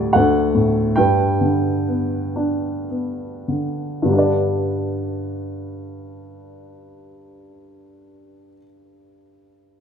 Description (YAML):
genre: classical, lyrical solo piano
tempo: 47-76 BPM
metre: 3/4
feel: rubato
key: G major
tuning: A4 = 440 Hz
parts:
  - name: dark baby grand piano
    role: solo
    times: 0.0-9.8 s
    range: D2 to G5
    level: -18 LUFS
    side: equal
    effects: none
room: moderate recital hall reverb, RT60 1.7 s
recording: minimal, uncompressed stereo recording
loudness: -17 LUFS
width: side -7 dB against mid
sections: 0.0-4.1 A section; 4.1-7.7 B section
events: slowing down 0.0-4.1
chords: 0.1 D; 1.0 G